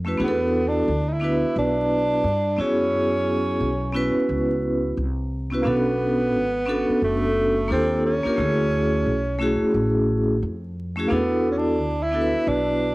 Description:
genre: hip hop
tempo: 88 BPM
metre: 4/4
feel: swing 62% on 16ths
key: unclear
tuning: A4 = 443 Hz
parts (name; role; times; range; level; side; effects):
- vibraphone with medium hard mallets; accompaniment; 0.0-12.9 s; A3 to B4; -22 LUFS; equal; none
- upright bass; bass; 0.0-12.9 s; F#1 to G2; -27 LUFS; equal; transformer saturation
- breathy tenor saxophone; melody; 0.2-12.9 s; A3 to E4; -24 LUFS; right 1 dB; cassette tape
room: moderate spring reverb, RT60 1.3 s, studio reverb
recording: home recording on cassette, vinyl crackle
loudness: -20 LUFS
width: side -20 dB against mid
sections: 0.0-12.9 A section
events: none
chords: 0.2 E9sus4; 2.6 F#9sus4; 5.7 Bm9; 7.7 D#maj9#11; 8.4 Dmaj9#11; 11.1 E9sus4

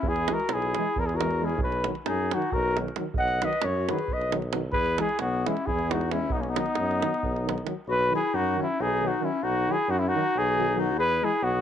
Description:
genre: balkan folk, Balkan brass band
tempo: 269 BPM (eighths)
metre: 7/8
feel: straight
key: B major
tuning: A4 = 440 Hz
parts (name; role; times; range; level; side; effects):
- mellow cornet; melody; 0.0-11.6 s; C#4 to F#5; -27 LUFS; equal; none
- warm clarinet; second line; 0.0-11.6 s; A#3 to D#5; -31 LUFS; left 11 dB; none
- warm tuba; bass; 0.0-11.6 s; B1 to F#2; -31 LUFS; right 1 dB; none
- davul; percussion; 0.0-7.8 s; none; -32 LUFS; right 4 dB; none
- mellow euphonium; accompaniment; 0.3-11.3 s; D#3 to E3; -35 LUFS; right 11 dB; none
- warm trombone; accompaniment; 0.3-11.3 s; F#3 to G#3; -36 LUFS; left 11 dB; none
room: moderate spring reverb, RT60 1.6 s, small room ambience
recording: 1960s-style stereo with parts hard left and right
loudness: -24 LUFS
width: side -9 dB against mid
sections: 0.0-7.9 A section; 7.9-11.6 A section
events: none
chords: 0.0 E; 1.6 B; 4.7 E; 6.3 B; 11.0 E

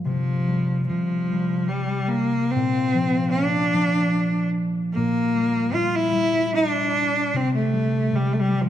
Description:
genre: celtic folk, Celtic slow air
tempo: 75 BPM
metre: 3/4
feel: rubato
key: unclear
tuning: A4 = 440 Hz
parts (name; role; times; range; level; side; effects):
- concert harp; accompaniment; 0.0-8.7 s; G2 to Bb3; -24 LUFS; left 1 dB; none
- bright cello; melody; 0.1-8.7 s; F3 to F4; -22 LUFS; equal; none
room: moderate concert hall reverb, RT60 2.4 s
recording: dark, warm production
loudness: -20 LUFS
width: side -11 dB against mid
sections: 0.1-8.7 A section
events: none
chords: 0.1 Csus4; 2.5 Bb; 4.9 Gm/Bb; 7.3 C5

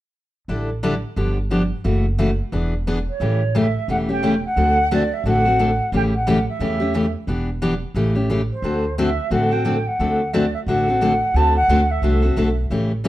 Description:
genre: acoustic string swing (jazz manouche)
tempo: 177 BPM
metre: 4/4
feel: swing 59% on 8ths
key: unclear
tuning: A4 = 441 Hz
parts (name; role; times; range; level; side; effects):
- picked steel-string acoustic guitar; accompaniment; 0.5-13.1 s; C#3 to A4; -20 LUFS; left 2 dB; none
- upright bass; bass; 0.5-13.1 s; E1 to E2; -22 LUFS; right 1 dB; none
- concert flute; melody; 3.1-12.6 s; C5 to A5; -21 LUFS; right 2 dB; slapback echo
room: moderate studio reverb, RT60 0.9 s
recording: dark, warm production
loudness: -17 LUFS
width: side -15 dB against mid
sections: 0.5-3.2 A section; 3.2-13.1 B section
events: none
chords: 0.5 A7sus4; 1.2 G7; 1.8 F#m7; 2.5 E7; 3.2 A7; 4.6 D7; 5.9 A7; 7.3 Em7; 8.0 A7; 8.6 D7

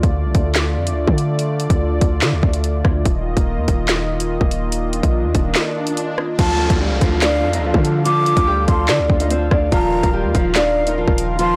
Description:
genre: hip hop, drill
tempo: 144 BPM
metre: 4/4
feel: half-time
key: D phrygian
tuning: A4 = 440 Hz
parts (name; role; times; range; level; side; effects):
- warm analog pad; sustained chords; 0.0-11.6 s; D3 to F5; -26 LUFS; equal; chorus
- hard-hitting 808-style bass; bass; 0.0-11.6 s; Eb1 to D3; -22 LUFS; equal; none
- drill drum kit; drums; 0.0-11.5 s; crash cymbal, handclaps, hi-hat, kick drum, rim click, snare drum; -21 LUFS; equal; none
- swell and downlifter; sound effects; 4.8-9.7 s; none; -31 LUFS; equal; none
- nylon-string guitar; melody; 6.4-11.6 s; F3 to Eb5; -22 LUFS; equal; tape echo
- breathy concert flute; second line; 6.4-11.6 s; F5 to D6; -24 LUFS; equal; tape echo
room: light reverb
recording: blown-out, overdriven recording, overdrive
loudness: -17 LUFS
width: mono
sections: 0.0-6.4 A section; 6.4-11.6 B section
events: swell 4.8-6.4; kick muted 5.6-6.4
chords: 0.0 Dm; 3.1 Ebsus2; 6.4 Dm; 9.7 Ebsus2

